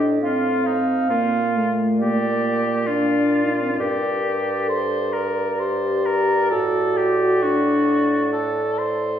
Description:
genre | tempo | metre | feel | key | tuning
classical, slow romantic movement for wind quintet | 63-70 BPM | 3/4 | rubato | Bb major, G minor from 3.8 s | A4 = 439 Hz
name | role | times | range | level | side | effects
clear oboe | second line | 0.0-9.2 s | Eb4 to C5 | -25 LUFS | left 2 dB | none
dark French horn | accompaniment | 0.0-8.3 s | A3 to Bb4 | -21 LUFS | left 1 dB | none
dark clarinet | accompaniment | 0.0-9.2 s | D5 to F5 | -26 LUFS | right 5 dB | none
mellow bassoon | bass | 0.0-9.2 s | G2 to Bb2 | -26 LUFS | right 1 dB | none
room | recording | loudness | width
wet recital hall reverb, RT60 1.6 s | heard from further back in the room | -18 LUFS | side -9 dB against mid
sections
0.0-9.2 A section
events
none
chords
0.0 F7/A; 1.1 Bb; 3.8 Gm; 6.5 D/A

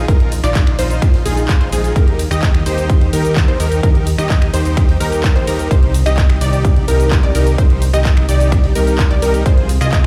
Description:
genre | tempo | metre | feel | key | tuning
EDM, festival progressive house | 128 BPM | 4/4 | straight | Eb major | A4 = 440 Hz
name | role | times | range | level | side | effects
unison pluck | arpeggios | 0.0-10.1 s | Ab4 to Eb5 | -24 LUFS | equal | sidechain pumping, tape echo
dense compressed supersaw | riff | 0.0-10.1 s | Eb4 to Eb5 | -24 LUFS | equal | sidechain pumping, tape echo
fat analog bass | bass | 0.0-10.1 s | Bb1 to Eb2 | -19 LUFS | equal | sidechain pumping
big-room dance drum kit | drums | 0.1-10.1 s | finger snaps, handclaps, hi-hat, ride cymbal, shaker | -28 LUFS | equal | studio reverb
electronic kick drum | drums | 0.1-10.0 s | none | -15 LUFS | equal | studio reverb
room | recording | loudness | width
digital ambience | played on a big sound system in a bare room, stone room reverb | -14 LUFS | mono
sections
0.0-10.1 A section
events
none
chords
0.0 Bbsus4; 2.0 Eb; 5.7 Cm; 9.5 Fm/C

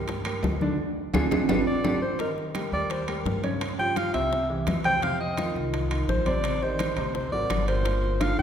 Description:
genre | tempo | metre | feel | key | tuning
Afro-Cuban jazz | 170 BPM | 4/4 | straight | C minor | A4 = 440 Hz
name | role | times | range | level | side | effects
warm baby grand piano | accompaniment | 0.0-8.4 s | A#2 to Eb5 | -30 LUFS | right 1 dB | none
upright bass | bass | 0.0-8.4 s | G1 to G2 | -30 LUFS | equal | none
bongos | percussion | 0.1-8.4 s | none | -37 LUFS | left 6 dB | none
congas | percussion | 0.1-8.4 s | none | -34 LUFS | left 3 dB | none
timbales | percussion | 0.1-8.4 s | none | -34 LUFS | right 5 dB | none
claves | percussion | 0.3-8.4 s | none | -41 LUFS | left 2 dB | none
mellow alto saxophone | melody | 1.5-8.4 s | Bb4 to G5 | -28 LUFS | equal | none
room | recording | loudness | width
wet concert hall reverb, RT60 1.8 s | recorded in a church or concert hall | -24 LUFS | side -8 dB against mid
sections
0.0-2.2 A section; 2.2-8.4 A section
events
alto saxophone solo 0.0-8.4; band accent 0.8-2.2; drum fill 1.5-2.2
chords
0.0 C7sus2 (rootless); 0.8 Ddim; 1.5 G5; 2.2 Eb7; 3.6 Cadd11; 4.3 C; 5.0 F5; 6.4 Am7b5; 7.1 Daug7; 7.9 Gm7

